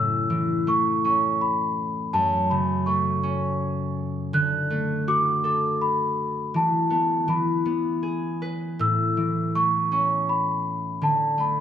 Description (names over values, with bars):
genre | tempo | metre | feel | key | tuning
children's music, lullaby | 82 BPM | 3/4 | rubato | A major | A4 = 442 Hz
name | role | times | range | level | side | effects
large celesta | melody | 0.0-11.6 s | A5 to F#6 | -23 LUFS | equal | none
concert harp | accompaniment | 0.0-11.6 s | F#2 to B4 | -25 LUFS | left 1 dB | none
room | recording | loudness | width
moderate recital hall reverb, RT60 1.5 s | none | -21 LUFS | side -9 dB against mid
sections
0.0-11.6 A section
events
none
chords
0.0 A; 2.1 F#m; 4.3 D; 6.5 Esus4; 7.3 E; 8.8 A; 11.0 D5